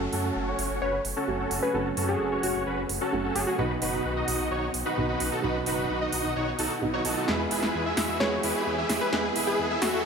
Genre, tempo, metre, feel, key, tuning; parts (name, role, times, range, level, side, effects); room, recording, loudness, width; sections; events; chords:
EDM, festival progressive house; 130 BPM; 4/4; straight; E major; A4 = 440 Hz
felt-muted upright piano; accompaniment; 0.0-10.1 s; B2 to G#4; -32 LUFS; right 4 dB; ping-pong delay
dense compressed supersaw; riff; 0.0-10.0 s; C#4 to E5; -29 LUFS; left 1 dB; low-pass filter, ping-pong delay
wide detuned saw bass; bass; 0.0-10.0 s; E1 to F#2; -36 LUFS; left 1 dB; chorus
riser; sound effects; 0.0-10.1 s; -37 LUFS; equal
big-room dance drum kit; drums; 0.1-9.9 s; hi-hat, snare drum; -32 LUFS; right 1 dB; overdrive
plucky unison lead; melody; 0.8-3.7, 8.2-10.0 s; F#4 to C#5; -32 LUFS; left 2 dB; cassette tape, ping-pong delay
moderate huge ambient reverb, RT60 7.2 s; high-pass filter; -25 LUFS; side -6 dB against mid
0.0-10.1 A section
build-up 0.0-10.1; riser 0.0-10.1; filter sweep on supersaw synth 0.0-10.1; drum fill 7.3-10.1
0.0 F#m; 3.6 B; 7.3 E